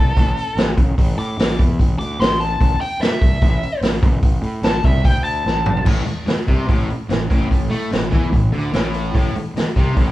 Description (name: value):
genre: blues rock power trio and southern rock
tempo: 147 BPM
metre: 4/4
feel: straight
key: A minor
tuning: A4 = 440 Hz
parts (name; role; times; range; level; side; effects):
- dark smooth lead guitar; melody; 0.0-5.8 s; A4 to D6; -23 LUFS; left 1 dB; wah, overdrive
- fuzz fingered electric bass; bass; 0.0-10.1 s; A1 to A2; -23 LUFS; equal; overdrive
- vintage drum kit; drums; 0.2-10.1 s; crash cymbal, hi-hat, kick drum, snare drum, toms; -17 LUFS; equal; none
- fuzz guitar; riff; 5.9-10.1 s; A2 to A3; -21 LUFS; equal; distortion
room: light reverb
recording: band playing live in one room, cassette tape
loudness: -15 LUFS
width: side -16 dB against mid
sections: 0.0-5.9 A section; 5.9-10.1 B section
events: lead electric guitar solo 0.0-5.9; drum fill 5.5-5.9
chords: 0.0 N.C.; 5.9 Am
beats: 0.16 0.57 | 0.97 1.38 1.79 2.19 | 2.60 3.01 3.41 3.82 | 4.23 4.64 5.04 5.45 | 5.86 6.27 6.68 7.09 | 7.50 7.91 8.32 8.73 | 9.14 9.55 9.96